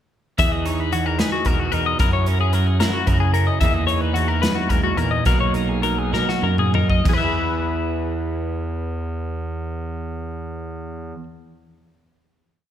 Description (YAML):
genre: math rock and midwest emo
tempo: 63-74 BPM (dotted quarters)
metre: 6/8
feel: straight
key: E lydian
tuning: A4 = 439 Hz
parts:
  - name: twelve-string electric guitar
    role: accompaniment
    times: 0.4-11.3 s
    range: E2 to G#4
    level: -25 LUFS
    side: right 5 dB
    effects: none
  - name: twelve-string electric guitar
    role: arpeggios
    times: 0.4-11.2 s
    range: F#4 to E5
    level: -23 LUFS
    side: left 7 dB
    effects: none
  - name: fuzz picked electric bass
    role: bass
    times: 0.4-11.1 s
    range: B1 to F#3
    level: -24 LUFS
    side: equal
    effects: overdrive
  - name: modern studio drum kit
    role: drums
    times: 0.4-7.2 s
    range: crash cymbal, hi-hat, kick drum, snare drum, toms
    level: -23 LUFS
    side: equal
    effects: none
room: wet concert hall reverb, RT60 1.8 s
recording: recorded in a church or concert hall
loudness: -18 LUFS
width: side -10 dB against mid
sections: 0.4-7.1 A section; 7.1-10.9 final chord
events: slowing down 3.6-7.1; drum fill 6.1-7.1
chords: 0.4 Emaj9#11; 2.0 F#7; 3.6 Emaj9#11; 5.3 Bmaj7; 7.1 E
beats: | 0.39 1.19 | 2.00 2.81 | 3.61 4.43 | 5.26 6.13 | 7.05 8.00 | 8.95 9.90